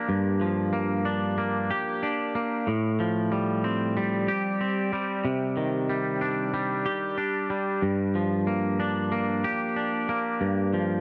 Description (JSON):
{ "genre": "rock", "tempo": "93 BPM", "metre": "4/4", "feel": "straight", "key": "G minor", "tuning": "A4 = 439 Hz", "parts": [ { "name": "twangy electric guitar", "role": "solo", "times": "0.0-11.0 s", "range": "G2 to G4", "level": "-27 LUFS", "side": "equal", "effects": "tape echo" } ], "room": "moderate studio reverb, RT60 0.6 s", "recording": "dark, warm production", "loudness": "-27 LUFS", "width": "mono", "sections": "0.0-11.0 A section", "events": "none", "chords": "0.0 Gm7; 2.7 Fadd9/A; 5.2 Cmadd9; 7.8 Gm7", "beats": "| 0.09 0.73 1.38 2.02 | 2.67 3.31 3.96 4.60 | 5.25 5.89 6.54 7.18 | 7.83 8.47 9.12 9.76 | 10.41" }